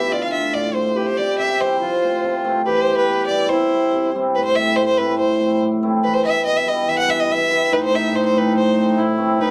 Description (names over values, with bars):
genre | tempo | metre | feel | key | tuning
klezmer | 142 BPM | 2/4 | straight | C major | A4 = 440 Hz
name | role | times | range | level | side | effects
rich violin | melody | 0.0-9.5 s | B4 to F#5 | -22 LUFS | equal | none
accordion | second line | 0.0-4.1, 7.7-9.5 s | D#4 to G4 | -25 LUFS | equal | none
cimbalom | accompaniment | 0.0-9.5 s | A2 to F4 | -22 LUFS | equal | none
room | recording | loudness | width
light reverb | dark, warm production | -18 LUFS | mono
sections
0.0-4.4 A section; 4.4-9.5 B section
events
none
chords
0.1 Dm; 1.0 C; 1.8 F; 2.7 Em; 3.5 C; 4.4 Am; 6.0 Em; 7.7 Am